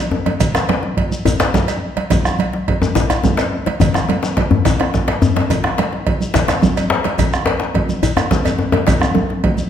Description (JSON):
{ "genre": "west african traditional, West African drum ensemble", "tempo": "142 BPM (dotted quarters)", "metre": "12/8", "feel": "straight", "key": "none", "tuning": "none", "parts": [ { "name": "djembe", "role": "percussion", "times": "0.1-9.3 s", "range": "none", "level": "-18 LUFS", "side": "left 4 dB", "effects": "none" }, { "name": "bombo", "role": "percussion", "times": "0.3-9.6 s", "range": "none", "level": "-20 LUFS", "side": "right 2 dB", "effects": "none" }, { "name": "congas", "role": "percussion", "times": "0.3-9.7 s", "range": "none", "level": "-22 LUFS", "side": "right 4 dB", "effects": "none" }, { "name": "cowbell", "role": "percussion", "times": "0.3-9.6 s", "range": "none", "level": "-24 LUFS", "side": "right 5 dB", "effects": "none" }, { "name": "djembe", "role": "percussion", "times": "0.3-9.7 s", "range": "none", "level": "-24 LUFS", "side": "left 4 dB", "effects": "none" }, { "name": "shekere", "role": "percussion", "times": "0.4-9.6 s", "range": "none", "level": "-26 LUFS", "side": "left 2 dB", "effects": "none" } ], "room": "wet recital hall reverb, RT60 1.4 s", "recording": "none", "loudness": "-14 LUFS", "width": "side -9 dB against mid", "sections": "0.0-9.7 A section", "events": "none", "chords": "none" }